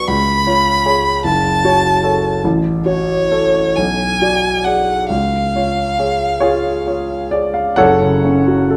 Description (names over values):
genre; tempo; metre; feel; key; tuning
classical, romantic duo for violin and grand piano; 43-52 BPM (dotted quarters); 6/8; rubato; F# minor; A4 = 440 Hz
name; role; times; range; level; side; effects
rich violin; melody; 0.0-7.3 s; C#5 to B5; -18 LUFS; equal; none
warm grand piano; accompaniment; 0.0-8.8 s; F#1 to F#5; -17 LUFS; equal; none
room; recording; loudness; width
moderate recital hall reverb, RT60 1.3 s; none; -15 LUFS; mono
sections
0.0-7.8 A section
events
none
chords
0.1 C#7; 1.3 F#m; 2.4 F#m/A; 3.8 G#m7b5/B; 5.1 C#; 7.8 F#m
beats
| 0.07 1.25 | 2.44 3.77 | 5.11 6.43 | 7.79